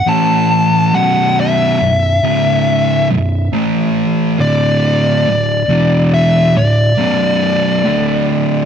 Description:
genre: metal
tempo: 69 BPM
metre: 4/4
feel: straight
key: B minor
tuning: A4 = 442 Hz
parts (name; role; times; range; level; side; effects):
- fuzz lead guitar; melody; 0.0-8.7 s; D5 to A5; -15 LUFS; left 1 dB; distortion, tape echo
- thick fuzz guitar; riff; 0.1-8.7 s; B1 to A3; -13 LUFS; equal; distortion
room: moderate large studio reverb, RT60 0.9 s, digital ambience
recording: dark, warm production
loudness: -11 LUFS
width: side -8 dB against mid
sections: 0.0-8.7 A section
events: none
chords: 0.1 A5; 0.9 B5; 2.2 C#5; 3.1 B5; 3.5 A5; 4.4 D5; 5.7 E5; 6.6 D5; 7.0 B5; 7.9 D5

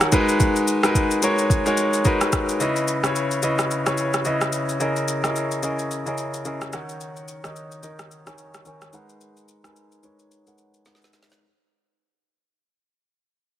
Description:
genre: amapiano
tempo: 109 BPM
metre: 4/4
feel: swing 58% on 16ths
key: unclear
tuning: A4 = 440 Hz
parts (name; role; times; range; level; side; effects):
- bright baby grand piano; accompaniment; 0.0-11.4 s; C#3 to A#5; -22 LUFS; left 1 dB; low-pass filter
- smooth R&B drum kit; drums; 0.0-11.5 s; kick drum, rim click, shaker, snare drum; -24 LUFS; equal; none
room: moderate lush hall reverb, RT60 2.0 s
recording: heavily compressed radio sound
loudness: -19 LUFS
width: side -12 dB against mid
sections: 0.0-11.4 A section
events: fade-out 0.0-11.4; filter sweep on grand piano 0.0-11.4; drum fill 10.9-11.4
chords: 0.1 G#m9; 2.6 C#m7; 4.8 C#m69; 6.7 D#m7; 8.9 G#m9

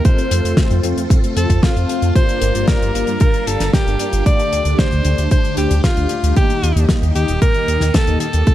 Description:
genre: italo disco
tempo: 114 BPM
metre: 4/4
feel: straight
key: unclear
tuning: A4 = 441 Hz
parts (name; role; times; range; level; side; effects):
- string machine, full ensemble; sustained chords; 0.0-8.5 s; G3 to Bb4; -24 LUFS; equal; phaser, ensemble chorus
- damped 70s drum kit; drums; 0.0-8.5 s; hi-hat, snare drum; -21 LUFS; left 1 dB; none
- edgy alto saxophone; melody; 0.1-8.5 s; F4 to D5; -21 LUFS; equal; digital delay
- mellow synth brass; stabs; 0.1-8.5 s; G2 to Eb5; -25 LUFS; left 3 dB; chorus
- electronic kick drum; drums; 0.1-8.5 s; none; -15 LUFS; equal; none
- chorused synth bass; bass; 0.3-8.4 s; Eb1 to G2; -18 LUFS; equal; none
room: light reverb, small room reverb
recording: dark, warm production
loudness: -13 LUFS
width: side -13 dB against mid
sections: 0.0-8.5 A section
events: none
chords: 0.1 F; 2.2 Gm7; 4.3 Dsus4; 6.4 Eb

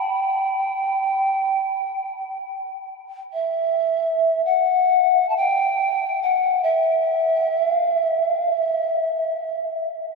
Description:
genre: world meditative, free-time meditation music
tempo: free time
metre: none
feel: none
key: E minor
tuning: A4 = 436 Hz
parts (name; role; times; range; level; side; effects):
- mellow hollow polished pan flute; solo; 0.0-9.6 s; E5 to A5; -19 LUFS; equal; ping-pong delay
room: wet huge ambient reverb, RT60 7.2 s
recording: in a vast, echoing space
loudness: -19 LUFS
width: side -3 dB against mid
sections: 0.0-10.2 A section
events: none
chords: none

